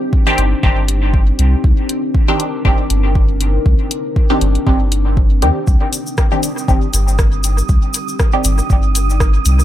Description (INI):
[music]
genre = dub techno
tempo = 119 BPM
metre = 4/4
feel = swing 55% on 16ths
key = C minor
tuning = A4 = 440 Hz
[part]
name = deep dark ambient pad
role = sustained chords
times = 0.0-9.6 s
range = C4 to Bb4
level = -23 LUFS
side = left 2 dB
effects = chorus, built-in reverb, sidechain pumping
[part]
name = electronic kick drum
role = drums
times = 0.1-9.3 s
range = none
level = -14 LUFS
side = equal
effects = overdrive
[part]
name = filtered dub chord stab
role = stabs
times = 0.3-8.5 s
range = Eb3 to G4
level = -20 LUFS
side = equal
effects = chorus, phaser, sidechain pumping, dub echo
[part]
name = soft dub sub bass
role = bass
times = 0.4-9.6 s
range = G1 to Eb2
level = -15 LUFS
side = equal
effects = sidechain pumping
[part]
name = deep house drum kit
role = drums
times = 0.4-9.6 s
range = hi-hat, rim click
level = -24 LUFS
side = left 1 dB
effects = overdrive, dub echo
[part]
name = cabasa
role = percussion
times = 5.7-9.6 s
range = none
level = -24 LUFS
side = left 3 dB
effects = none
[part]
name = wind-like tuned noise texture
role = texture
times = 6.5-9.6 s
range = Eb6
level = -27 LUFS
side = right 12 dB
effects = built-in reverb, sidechain pumping
[sound]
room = little or no reverb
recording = echo-heavy mix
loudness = -12 LUFS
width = side -13 dB against mid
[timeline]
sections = 0.0-9.6 A section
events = none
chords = 0.0 Cmadd9